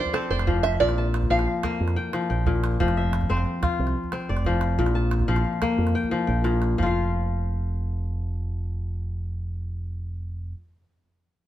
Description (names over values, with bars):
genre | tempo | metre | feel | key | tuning
west african traditional, West African string and xylophone music | 121 BPM (dotted quarters) | 12/8 | straight | unclear | A4 = 436 Hz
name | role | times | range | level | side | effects
open-back banjo | melody | 0.0-1.7 s | A4 to F5 | -25 LUFS | right 4 dB | none
kora | arpeggios | 0.0-10.6 s | Bb2 to A5 | -26 LUFS | left 3 dB | none
calabash | percussion | 0.1-6.9 s | none | -31 LUFS | right 3 dB | none
fingered electric bass with an envelope filter | bass | 0.3-10.5 s | F1 to F2 | -26 LUFS | right 1 dB | none
room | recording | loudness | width
moderate stone room reverb, RT60 1.2 s | band playing live in one room | -22 LUFS | side -13 dB against mid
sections
0.0-6.8 A section; 6.8-10.7 B section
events
drum fill 6.1-6.8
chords
0.0 F5; 0.8 Bb; 2.8 F5; 4.8 Bb5; 6.8 N.C.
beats
0.31 | 0.81 1.30 1.80 2.30 | 2.80 3.30 3.80 4.29 | 4.79 5.29 5.79 6.28 | 6.78 7.28 7.77 8.27 | 8.77 9.26 9.76 10.25